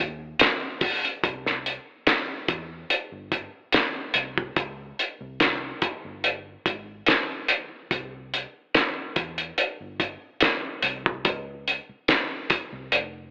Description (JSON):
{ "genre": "lush 1970s-style soul", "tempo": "72 BPM", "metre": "4/4", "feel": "swing 54% on 16ths", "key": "unclear", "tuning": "A4 = 440 Hz", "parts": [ { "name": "vintage muted fingered electric bass", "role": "bass", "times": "0.0-13.3 s", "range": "F1 to E2", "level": "-40 LUFS", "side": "equal", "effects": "none" }, { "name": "cloth-damped thuddy drum kit", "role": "drums", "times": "0.4-13.1 s", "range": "hi-hat, kick drum, snare drum", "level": "-22 LUFS", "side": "equal", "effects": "none" } ], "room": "moderate plate reverb, RT60 2.7 s", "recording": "telephone sound", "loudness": "-23 LUFS", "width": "side -32 dB against mid", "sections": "0.0-1.2 A section; 1.2-13.3 B section", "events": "none", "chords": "none" }